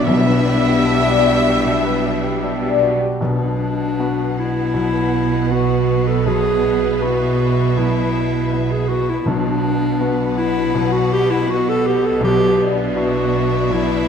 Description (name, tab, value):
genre	cinematic, emotional film score for orchestra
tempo	80 BPM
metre	4/4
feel	rubato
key	B minor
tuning	A4 = 440 Hz
part	rich cello	melody	0.0-2.8 s	E4	-28 LUFS	right 4 dB	none
part	warm symphonic violin section	melody	0.0-14.1 s	E5 to F#5	-31 LUFS	left 3 dB	none
part	mellow oboe	second line	0.0-2.8 s	E5	-25 LUFS	right 2 dB	none
part	warm clarinet	second line	0.0-14.1 s	B3 to A4	-20 LUFS	left 1 dB	none
part	warm studio violin section	second line	0.0-14.1 s	B4 to E5	-30 LUFS	left 1 dB	none
part	rich symphonic viola section	accompaniment	0.0-14.1 s	G3 to B3	-28 LUFS	right 3 dB	none
part	warm grand piano	accompaniment	0.0-14.1 s	B1 to D5	-24 LUFS	left 2 dB	none
part	mellow French horn section	sustained chords	0.0-2.9 s	G3 to D4	-24 LUFS	left 6 dB	none
part	concert harp	arpeggios	0.0-14.1 s	B2 to D6	-24 LUFS	left 8 dB	none
part	bright symphonic cello section	bass	0.0-14.1 s	B2	-26 LUFS	right 3 dB	none
part	warm symphonic double bass section	bass	0.0-14.1 s	B1	-23 LUFS	right 6 dB	none
part	timpani	percussion	0.1-4.3, 9.3-13.3 s	B2	-26 LUFS	equal	none
room	wet scoring stage reverb, RT60 1.8 s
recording	none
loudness	-15 LUFS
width	side -7 dB against mid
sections	0.0-3.2 A section; 3.2-14.1 A section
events	none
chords	0.1 Em7/B; 3.2 Bm; 6.3 E/B; 9.3 Bm; 12.2 Em7/B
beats	| 0.08 0.87 1.67 2.45 | 3.23 4.00 4.76 5.51 | 6.26 7.01 7.77 8.51 | 9.26 10.00 10.73 11.47 | 12.21 12.96 13.70